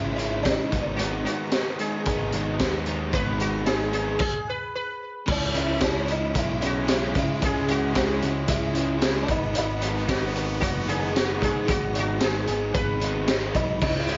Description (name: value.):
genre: indie rock.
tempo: 112 BPM.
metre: 4/4.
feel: straight.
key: C# minor.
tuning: A4 = 440 Hz.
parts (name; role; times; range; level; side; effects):
sitar; melody; 0.0-14.2 s; C#4 to B4; -32 LUFS; equal; none.
crunchy overdriven guitar; riff; 0.0-14.2 s; G#2 to E4; -34 LUFS; equal; analog chorus.
overdriven electric guitar; riff; 0.0-14.2 s; G#2 to E4; -34 LUFS; equal; none.
fuzz picked electric bass; bass; 0.0-14.2 s; F#1 to C#3; -32 LUFS; equal; overdrive.
raw garage drum kit; drums; 0.2-14.2 s; crash cymbal, hi-hat, kick drum, snare drum, tambourine; -29 LUFS; equal; none.
warm trumpet; second line; 5.3-14.2 s; G#3 to B3; -39 LUFS; equal; none.
egg shaker; percussion; 13.8-14.2 s; none; -53 LUFS; equal; none.
room: light reverb, small room ambience.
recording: nothing above 7.6 kHz.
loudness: -25 LUFS.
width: mono.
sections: 0.0-5.3 A section; 5.3-14.2 B section.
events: stop 4.2-5.3.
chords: 0.0 C#m; 0.7 G#m7; 5.3 C#m7; 9.3 G#m7.